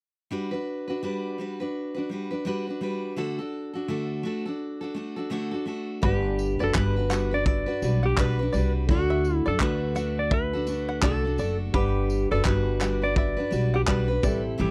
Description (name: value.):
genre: acoustic pop.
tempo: 84 BPM.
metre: 4/4.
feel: swing 60% on 16ths.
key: G major.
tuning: A4 = 438 Hz.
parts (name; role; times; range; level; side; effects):
picked steel-string acoustic guitar; accompaniment; 0.3-14.7 s; A2 to B4; -32 LUFS; equal; none.
dark upright piano; accompaniment; 6.0-14.7 s; G3 to F#5; -40 LUFS; equal; none.
bluegrass banjo; arpeggios; 6.0-14.4 s; B4 to F#5; -38 LUFS; equal; none.
upright bass; bass; 6.0-14.7 s; F#1 to F#2; -30 LUFS; equal; none.
loose indie drum kit; drums; 6.0-14.4 s; handclaps, kick drum, tambourine; -29 LUFS; equal; none.
clean lap steel guitar; melody; 6.1-14.7 s; F#4 to D5; -31 LUFS; equal; none.
room: little or no reverb.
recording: dry, close 1970s-style studio recording.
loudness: -26 LUFS.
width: mono.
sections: 0.3-6.0 A section; 6.0-14.7 B section.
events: none.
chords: 0.3 Gmaj7; 3.2 D; 6.0 Gmaj7; 8.9 D; 11.7 Gmaj7.